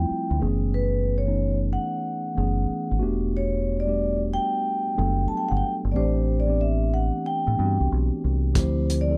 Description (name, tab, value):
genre	R&B, neo-soul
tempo	92 BPM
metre	4/4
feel	swing 64% on 16ths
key	unclear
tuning	A4 = 440 Hz
part	vibraphone with medium mallets	melody	0.0-9.2 s	B4 to A5	-30 LUFS	equal	none
part	mellow tine electric piano	accompaniment	0.0-9.2 s	E3 to A4	-30 LUFS	equal	none
part	deep dub fingered electric bass	bass	0.0-9.2 s	E1 to A2	-26 LUFS	equal	none
part	warm soul drum kit	drums	8.6-9.1 s	hi-hat, kick drum	-26 LUFS	equal	none
room	small room reverb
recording	none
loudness	-24 LUFS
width	mono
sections	0.0-9.2 A section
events	none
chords	0.4 F#m11; 3.0 Em11; 5.9 Am11; 8.6 Dm11